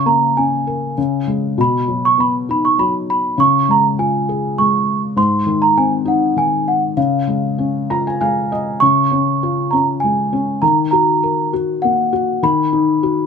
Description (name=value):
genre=children's music, lullaby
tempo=100 BPM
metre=3/4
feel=straight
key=unclear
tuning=A4 = 439 Hz
part: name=celesta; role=melody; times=0.0-13.3 s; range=E#5 to C#6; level=-16 LUFS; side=right 4 dB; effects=none
part: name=felt-muted upright piano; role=accompaniment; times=0.0-13.3 s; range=G#2 to A#5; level=-17 LUFS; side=left 4 dB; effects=none
room=moderate small room reverb, RT60 0.5 s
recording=dark, warm production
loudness=-14 LUFS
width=side -6 dB against mid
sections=0.0-8.8 A section; 8.8-13.3 B section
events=felt piano fill 7.6-8.8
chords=0.0 A#m7/C#; 1.0 C#5; 1.6 B; 3.4 C#; 5.2 G#; 7.0 C#; 10.6 D#m; 12.4 B/D#